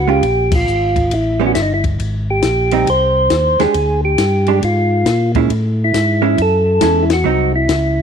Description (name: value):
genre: soul jazz organ trio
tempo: 137 BPM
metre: 4/4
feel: swing 65% on 8ths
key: unclear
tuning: A4 = 440 Hz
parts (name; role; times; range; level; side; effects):
- percussive tonewheel organ; melody; 0.0-8.0 s; D#4 to B#4; -15 LUFS; equal; slow rotary speaker
- tonewheel organ; bass; 0.0-8.0 s; G1 to A#2; -17 LUFS; equal; none
- vintage hollow-body jazz guitar; accompaniment; 0.1-7.5 s; Gb3 to G4; -19 LUFS; right 13 dB; none
- compact cocktail drum kit; drums; 0.2-7.8 s; crash cymbal, hi-hat, kick drum, ride cymbal, snare drum; -21 LUFS; left 5 dB; none
room: light reverb, small room ambience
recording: 1960s-style stereo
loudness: -12 LUFS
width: side -7 dB against mid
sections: 0.0-8.0 A section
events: band accent 0.5, 7.0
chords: 0.2 A#5; 1.1 A9; 2.0 G#maj7; 3.7 A#6; 5.5 Amaj7; 7.3 Cdim